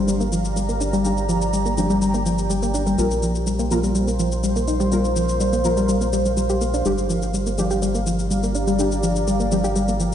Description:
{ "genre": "melodic techno", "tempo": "124 BPM", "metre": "4/4", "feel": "straight", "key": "G minor", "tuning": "A4 = 440 Hz", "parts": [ { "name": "deep dark ambient pad", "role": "sustained chords", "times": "0.0-10.1 s", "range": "G4 to C6", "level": "-25 LUFS", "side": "right 1 dB", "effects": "chorus, built-in reverb" }, { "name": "soft round pluck", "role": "arpeggios", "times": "0.0-10.1 s", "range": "F3 to G4", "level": "-22 LUFS", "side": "left 1 dB", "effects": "chorus, ping-pong delay" }, { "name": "synth brass stab", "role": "stabs", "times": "0.0-10.1 s", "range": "G3 to Bb4", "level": "-28 LUFS", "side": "left 1 dB", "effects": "chorus, phaser, ping-pong delay" }, { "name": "round analog bass", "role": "bass", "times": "0.0-10.1 s", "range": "G1 to Bb1", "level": "-25 LUFS", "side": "equal", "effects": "none" }, { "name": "shaker", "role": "drums", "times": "0.1-10.1 s", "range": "none", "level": "-32 LUFS", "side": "left 4 dB", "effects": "overdrive" } ], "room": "moderate lush hall reverb, RT60 1.9 s", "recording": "played on a big sound system in a bare room, stone room reverb, nothing above 10.4 kHz", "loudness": "-18 LUFS", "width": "side -9 dB against mid", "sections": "0.0-10.1 A section", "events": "filter sweep on synth arpeggio sound 0.0-10.1", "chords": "0.0 Gm7; 3.0 Bbsus2; 6.9 Gm7", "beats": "0.08 0.56 | 1.05 1.53 2.02 2.50 | 2.98 3.47 3.95 4.44 | 4.92 5.40 5.89 6.37 | 6.86 7.34 7.82 8.31 | 8.79 9.28 9.76" }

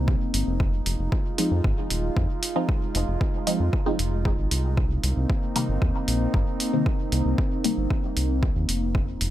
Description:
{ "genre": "dub techno", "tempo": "115 BPM", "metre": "4/4", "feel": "straight", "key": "unclear", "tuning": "A4 = 440 Hz", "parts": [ { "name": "warbly tape-like pad", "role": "sustained chords", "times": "0.0-9.3 s", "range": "Ab3 to F4", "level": "-30 LUFS", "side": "equal", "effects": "chorus, built-in reverb, sidechain pumping" }, { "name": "round analog bass", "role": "bass", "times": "0.0-9.3 s", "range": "Eb1 to F2", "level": "-25 LUFS", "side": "equal", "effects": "tube saturation, sidechain pumping" }, { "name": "electronic kick drum", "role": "drums", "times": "0.1-9.1 s", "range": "none", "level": "-25 LUFS", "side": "equal", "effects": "overdrive" }, { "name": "electronic hi-hat", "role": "drums", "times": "0.3-9.3 s", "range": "none", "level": "-29 LUFS", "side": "equal", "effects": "overdrive" }, { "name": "filtered dub chord stab", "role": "stabs", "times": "1.4-7.8 s", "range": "C3 to Eb4", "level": "-30 LUFS", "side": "left 1 dB", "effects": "phaser, sidechain pumping, dub echo" } ], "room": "little or no reverb", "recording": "none", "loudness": "-22 LUFS", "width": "side -13 dB against mid", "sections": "0.0-9.3 A section", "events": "filter sweep on synth stab 0.0-9.3", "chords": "0.0 Cm7; 0.6 Fm7; 4.8 Cm7", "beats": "0.08 | 0.60 1.12 1.64 2.17 | 2.69 3.21 3.73 4.25 | 4.78 5.30 5.82 6.34 | 6.86 7.38 7.91 8.43 | 8.95" }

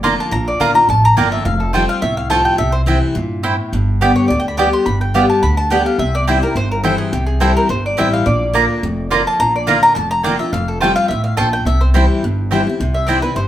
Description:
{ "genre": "bluegrass", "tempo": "212 BPM", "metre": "4/4", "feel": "swing 54% on 8ths", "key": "C mixolydian", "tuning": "A4 = 438 Hz", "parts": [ { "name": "mandolin", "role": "melody", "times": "0.0-13.5 s", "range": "G4 to D6", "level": "-17 LUFS", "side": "left 1 dB", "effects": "none" }, { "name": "picked steel-string acoustic guitar", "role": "accompaniment", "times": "0.0-13.5 s", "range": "F2 to G4", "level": "-19 LUFS", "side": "left 2 dB", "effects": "none" }, { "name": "mandolin", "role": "stabs", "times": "0.0-13.2 s", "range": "A3 to Bb5", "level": "-18 LUFS", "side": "right 4 dB", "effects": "none" }, { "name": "upright bass", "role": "bass", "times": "0.0-13.5 s", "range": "F1 to G2", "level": "-18 LUFS", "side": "equal", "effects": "none" } ], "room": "moderate large studio reverb, RT60 0.9 s", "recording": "band playing live in one room", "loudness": "-13 LUFS", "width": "side -12 dB against mid", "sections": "0.0-3.7 A section; 3.7-12.8 A section", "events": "none", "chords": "0.0 Bb; 1.5 Fadd9; 2.6 C; 3.7 G; 6.0 C; 8.3 Bb; 10.5 Fadd9; 11.7 C", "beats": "0.04 | 0.32 0.61 0.89 1.17 | 1.46 1.74 2.02 2.31 | 2.59 2.88 3.16 3.44 | 3.73 4.01 4.30 4.58 | 4.86 5.15 5.43 5.71 | 6.00 6.28 6.56 6.85 | 7.13 7.41 7.70 7.98 | 8.26 8.55 8.83 9.11 | 9.40 9.68 9.96 10.24 | 10.53 10.81 11.10 11.38 | 11.66 11.95 12.23 12.51 | 12.79 13.08 13.36" }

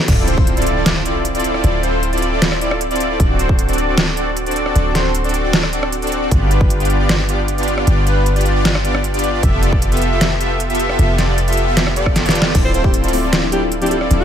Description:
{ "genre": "future bass", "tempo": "154 BPM", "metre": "4/4", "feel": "half-time", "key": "D dorian", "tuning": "A4 = 441 Hz", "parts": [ { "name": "swell and impact", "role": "sound effects", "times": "0.0-1.6 s", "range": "none", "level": "-23 LUFS", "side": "equal", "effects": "none" }, { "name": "airy dreamy lead", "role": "arpeggios", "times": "0.1-14.2 s", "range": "B4 to E5", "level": "-24 LUFS", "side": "equal", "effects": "chorus, sidechain pumping, ping-pong delay" }, { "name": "soft supersaw", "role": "riff", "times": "0.1-14.2 s", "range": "B3 to E5", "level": "-19 LUFS", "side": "equal", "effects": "sidechain pumping" }, { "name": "warm 808-style bass", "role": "bass", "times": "0.1-14.2 s", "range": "D1 to G1", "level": "-19 LUFS", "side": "equal", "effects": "sidechain pumping, high-pass filter" }, { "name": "dubstep drum kit", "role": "drums", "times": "0.1-14.2 s", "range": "crash cymbal, hi-hat, rim click, snare drum", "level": "-19 LUFS", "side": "equal", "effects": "none" }, { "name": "electronic kick drum", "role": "drums", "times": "0.1-0.5, 3.2-3.6, 6.3-6.7, 9.4-12.9 s", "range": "none", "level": "-16 LUFS", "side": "equal", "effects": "none" }, { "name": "soft round pluck", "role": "accompaniment", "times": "12.5-14.2 s", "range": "F3 to E4", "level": "-22 LUFS", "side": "left 5 dB", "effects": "chorus, sidechain pumping" }, { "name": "breathy alto saxophone", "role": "melody", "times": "12.6-14.2 s", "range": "G4 to C5", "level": "-23 LUFS", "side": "right 1 dB", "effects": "sidechain pumping, ping-pong delay" } ], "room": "little or no reverb", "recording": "none", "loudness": "-14 LUFS", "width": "side -9 dB against mid", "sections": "0.1-14.2 A section", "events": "drop 0.1-14.2; impact 0.1-1.6; drum fill 12.2-12.5", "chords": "0.1 Dm9; 3.2 D7; 6.3 G7; 9.4 Fmaj9#11; 12.5 Dm9", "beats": "| 0.08 0.47 0.86 1.25 | 1.64 2.03 2.42 2.81 | 3.20 3.59 3.98 4.37 | 4.76 5.15 5.54 5.93 | 6.32 6.71 7.09 7.48 | 7.87 8.26 8.65 9.04 | 9.43 9.82 10.21 10.60 | 10.99 11.38 11.77 12.16 | 12.55 12.94 13.33 13.72 | 14.11" }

